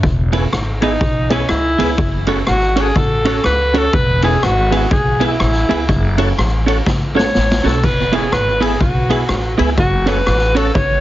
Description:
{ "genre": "ska", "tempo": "123 BPM", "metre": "4/4", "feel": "swing 61% on 8ths", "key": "E major", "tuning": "A4 = 440 Hz", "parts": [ { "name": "upright bass", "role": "bass", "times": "0.0-11.0 s", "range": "E1 to C#2", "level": "-18 LUFS", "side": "equal", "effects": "none" }, { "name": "street-band drum kit", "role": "drums", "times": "0.0-10.9 s", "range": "crash cymbal, kick drum, ride cymbal, rim click, snare drum", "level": "-19 LUFS", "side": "equal", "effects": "tape echo" }, { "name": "semi-hollow electric guitar", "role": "accompaniment", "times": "0.3-10.7 s", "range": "B3 to C#5", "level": "-21 LUFS", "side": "right 5 dB", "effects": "tape echo" }, { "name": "tonewheel organ", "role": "stabs", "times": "0.3-10.7 s", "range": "G#3 to A4", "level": "-25 LUFS", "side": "left 3 dB", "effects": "chorus vibrato, slow rotary speaker, tape echo" }, { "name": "breathy alto saxophone", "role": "melody", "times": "0.8-11.0 s", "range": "C#4 to C#5", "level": "-18 LUFS", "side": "equal", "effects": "tape echo" } ], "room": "light reverb", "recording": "heavily compressed radio sound, multiband compression, nothing above 7.5 kHz", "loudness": "-13 LUFS", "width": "side -14 dB against mid", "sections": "0.0-11.0 A section", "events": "alto saxophone solo 0.0-11.0; drum fill 6.9-7.8", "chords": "0.0 E; 2.0 F#m; 3.9 E; 5.9 F#m; 7.8 E; 9.8 F#m", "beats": "| 0.03 0.52 1.01 1.50 | 1.99 2.48 2.96 3.45 | 3.94 4.42 4.91 5.40 | 5.88 6.37 6.86 7.34 | 7.83 8.32 8.80 9.29 | 9.78 10.27 10.75" }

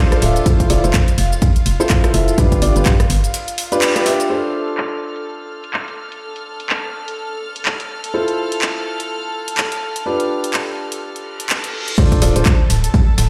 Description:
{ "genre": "piano house", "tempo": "125 BPM", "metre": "4/4", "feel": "swing 58% on 16ths", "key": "D dorian", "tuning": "A4 = 439 Hz", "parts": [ { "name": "dark studio string section", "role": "sustained chords", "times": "0.0-13.3 s", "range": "F4 to F6", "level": "-30 LUFS", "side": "equal", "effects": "sidechain pumping, low-pass filter" }, { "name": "clear concert grand piano", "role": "riff", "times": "0.0-12.5 s", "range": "D4 to E5", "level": "-23 LUFS", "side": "equal", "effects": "sidechain pumping, delay" }, { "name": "organ-like FM bass", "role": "bass", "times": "0.0-3.3, 12.0-13.3 s", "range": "D1 to G2", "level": "-20 LUFS", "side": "equal", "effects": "sidechain pumping" }, { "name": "house drum kit", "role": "drums", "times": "0.1-13.3 s", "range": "crash cymbal, handclaps, hi-hat, rim click, shaker", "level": "-25 LUFS", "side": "equal", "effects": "low-pass filter on snare, low-pass filter on hats, low-pass filter on perc, low-pass filter on cymbals" }, { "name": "dusty soul sampler-style drum kit", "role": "drums", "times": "0.2-4.2, 12.0-13.3 s", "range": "ride cymbal, snare drum", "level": "-35 LUFS", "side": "equal", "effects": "none" }, { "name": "electronic kick drum", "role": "drums", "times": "0.5-3.0, 12.0-13.1 s", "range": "none", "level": "-17 LUFS", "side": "equal", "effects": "none" }, { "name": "reverse cymbal and sub drop", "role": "sound effects", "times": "11.4-13.3 s", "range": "none", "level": "-28 LUFS", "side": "equal", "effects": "none" } ], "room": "light reverb", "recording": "played on a big sound system in a bare room, large studio reverb", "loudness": "-17 LUFS", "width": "mono", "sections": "0.0-4.3 A section; 4.3-12.0 B section; 12.0-13.3 C section", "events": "break 3.3-4.3; band accent 3.8; filter sweep on drum 4.3-12.0; reverse cymbal 11.4-12.0; drop 12.0-13.3; impact 12.0-13.3", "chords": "0.5 Fmaj7; 2.4 G7; 4.3 Dm7; 8.1 Fmaj7; 10.1 G7; 12.0 Dm7", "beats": "| 0.46 0.94 1.42 1.90 | 2.38 2.86 3.34 3.82 | 4.30 4.78 5.26 5.74 | 6.22 6.70 7.18 7.66 | 8.14 8.62 9.10 9.58 | 10.06 10.54 11.02 11.50 | 11.98 12.46 12.94" }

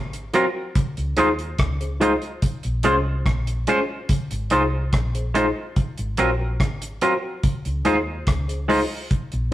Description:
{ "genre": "lovers rock reggae", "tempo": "72 BPM", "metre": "4/4", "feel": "straight", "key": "unclear", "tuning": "A4 = 444 Hz", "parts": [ { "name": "vintage muted fingered electric bass", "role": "bass", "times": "0.0-9.5 s", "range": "Ab1 to Eb2", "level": "-26 LUFS", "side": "equal", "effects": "none" }, { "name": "deep reggae drum kit", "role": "drums", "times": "0.1-9.5 s", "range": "hi-hat, kick drum, rim click", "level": "-23 LUFS", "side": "equal", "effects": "none" }, { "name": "mellow tine electric piano", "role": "accompaniment", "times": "0.3-8.8 s", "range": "Db4 to C5", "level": "-25 LUFS", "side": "left 2 dB", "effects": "medium stereo tremolo" }, { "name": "twangy electric guitar", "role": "stabs", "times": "0.3-8.8 s", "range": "Gb3 to C5", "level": "-21 LUFS", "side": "right 2 dB", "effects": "none" } ], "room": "moderate stone room reverb, RT60 1.2 s", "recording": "rough rehearsal-room recording", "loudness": "-20 LUFS", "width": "side -14 dB against mid", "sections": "0.0-9.5 A section", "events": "none", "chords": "0.0 Ab13; 0.8 Dbmaj9; 2.4 Bbm9; 4.1 Fm7; 5.8 Ab13; 7.4 Dbmaj9", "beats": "0.76 1.59 | 2.43 3.26 4.10 4.93 | 5.77 6.60 7.44 8.27 | 9.11" }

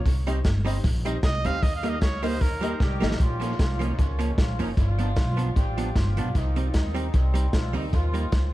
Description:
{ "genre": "ska", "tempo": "152 BPM", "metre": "4/4", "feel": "swing 55% on 8ths", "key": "Bb dorian", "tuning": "A4 = 440 Hz", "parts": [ { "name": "upright bass", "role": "bass", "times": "0.0-8.5 s", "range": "Gb1 to Eb2", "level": "-26 LUFS", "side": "equal", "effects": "none" }, { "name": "crunchy breakbeat drum kit", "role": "drums", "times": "0.1-8.4 s", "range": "hi-hat, kick drum, snare drum", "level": "-25 LUFS", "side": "equal", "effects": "tape echo" }, { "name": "archtop guitar, miked and amplified", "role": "accompaniment", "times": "0.3-8.2 s", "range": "F3 to Eb4", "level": "-32 LUFS", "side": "right 4 dB", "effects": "tube saturation" }, { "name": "dark upright piano", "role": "stabs", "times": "0.3-3.1 s", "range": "Eb4 to Eb5", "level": "-35 LUFS", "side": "left 5 dB", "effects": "none" }, { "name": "bright trumpet", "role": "melody", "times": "1.2-2.8 s", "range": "Bb4 to F5", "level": "-33 LUFS", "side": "right 2 dB", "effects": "tape echo" }, { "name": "dark horn section", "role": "melody", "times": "2.8-8.5 s", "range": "C3 to G4", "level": "-33 LUFS", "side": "equal", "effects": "tape echo" } ], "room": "little or no reverb", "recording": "vinyl crackle", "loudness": "-22 LUFS", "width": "side -16 dB against mid", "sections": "0.0-3.2 A section; 3.2-8.5 B section", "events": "trumpet solo 0.0-3.2; drum fill 2.8-3.2", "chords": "0.1 Cm; 1.6 Eb; 3.2 Bbm; 4.8 G7; 6.3 Cm; 7.9 Eb", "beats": "| 0.06 0.45 0.84 1.23 | 1.62 2.02 2.41 2.80 | 3.20 3.59 3.98 4.38 | 4.77 5.17 5.56 5.95 | 6.35 6.74 7.14 7.53 | 7.92 8.32" }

